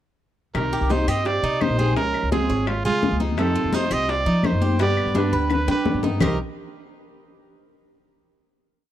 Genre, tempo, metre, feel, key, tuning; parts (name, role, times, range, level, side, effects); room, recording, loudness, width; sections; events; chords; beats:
latin, Cuban son and guajira; 170 BPM; 4/4; straight; A4 = 440 Hz
nylon-string guitar; second line; 0.5-6.4 s; Ab3 to G4; -28 LUFS; right 4 dB
picked steel-string acoustic guitar; accompaniment; 0.5-6.4 s; B2 to G4; -29 LUFS; left 6 dB
upright bass; bass; 0.5-6.4 s; Ab1 to G3; -24 LUFS; equal
bongos; percussion; 0.5-6.3 s; -28 LUFS; left 8 dB
claves; percussion; 0.5-6.3 s; -35 LUFS; left 7 dB
congas; percussion; 0.5-6.3 s; -28 LUFS; left 1 dB
bright trumpet; melody; 0.6-6.4 s; F4 to Eb5; -25 LUFS; right 3 dB
Cuban tres; arpeggios; 0.7-6.4 s; B3 to Db5; -30 LUFS; right 1 dB
small room ambience; dry, close 1970s-style studio recording; -19 LUFS; side -12 dB against mid
0.5-6.2 verse; 6.2-7.6 final chord
drum fill 5.1-6.2
0.5 Cm7; 2.0 Dbmaj7; 3.4 F7; 4.8 G; 6.2 C7(no3)
| 0.55 0.90 1.26 1.61 | 1.97 2.32 2.67 3.03 | 3.38 3.73 4.09 4.44 | 4.79 5.15 5.50 5.86 | 6.21